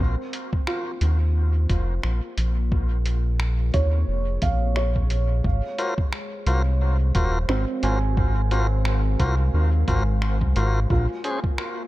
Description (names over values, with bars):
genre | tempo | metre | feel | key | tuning
ambient dub | 88 BPM | 4/4 | swing 57% on 16ths | Bb minor | A4 = 440 Hz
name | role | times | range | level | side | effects
warbly tape-like pad | sustained chords | 0.0-11.9 s | Ab3 to F5 | -37 LUFS | left 2 dB | chorus, built-in reverb
felt-muted upright piano | arpeggios | 0.0-11.9 s | C4 to Ab5 | -31 LUFS | right 3 dB | dub echo
round analog bass | bass | 0.0-11.1 s | Eb1 to Eb2 | -21 LUFS | equal | none
lo-fi sampler-style drum kit | drums | 0.3-11.7 s | finger snaps, hi-hat | -34 LUFS | equal | studio reverb, dub echo
electronic kick drum | drums | 0.5-11.6 s | none | -24 LUFS | equal | studio reverb
tonewheel organ | stabs | 5.8-11.4 s | Db4 to C5 | -31 LUFS | left 2 dB | overdrive, dub echo
room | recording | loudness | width
digital ambience | echo-heavy mix | -20 LUFS | side -17 dB against mid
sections
0.0-11.9 A section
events
fade-in on ambient pad 0.0-11.9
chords
0.0 Bbm7; 5.4 Ab13; 10.9 Bbm7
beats
0.68 1.36 2.04 | 2.72 3.40 4.08 4.77 | 5.45 6.13 6.81 7.49 | 8.18 8.86 9.54 10.22 | 10.90 11.58